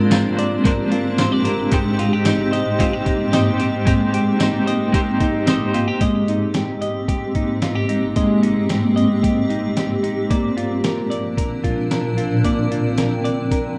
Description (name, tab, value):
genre	dream pop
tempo	112 BPM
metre	4/4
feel	straight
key	Ab lydian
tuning	A4 = 440 Hz
part	electric guitar at the edge of break-up	accompaniment	0.0-6.0 s	F3 to C5	-26 LUFS	equal	tremolo, subtle chorus
part	granular cloud pad	sustained chords	0.0-13.8 s	Ab2 to Bb4	-22 LUFS	equal	built-in reverb
part	semi-hollow electric guitar	arpeggios	0.0-13.8 s	Ab3 to Eb5	-25 LUFS	equal	subtle chorus, delay
part	lo-fi sampler-style drum kit	drums	0.1-13.6 s	hi-hat, kick drum, snare drum, tambourine	-25 LUFS	equal	none
part	vibraphone with medium mallets	texture	2.5-9.4, 12.7-13.8 s	G4 to G5	-39 LUFS	equal	none
room	light reverb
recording	rough home demo mix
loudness	-19 LUFS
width	mono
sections	0.0-6.0 A section; 6.0-13.8 B section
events	none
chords	0.0 Bb9/Ab; 1.7 Abmaj7; 10.3 Bbadd9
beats	0.12 0.66 1.19 | 1.73 2.27 2.80 3.34 | 3.87 4.41 4.94 5.48 | 6.01 6.55 7.09 7.62 | 8.16 8.69 9.23 9.77 | 10.30 10.84 11.37 11.91 | 12.44 12.98 13.52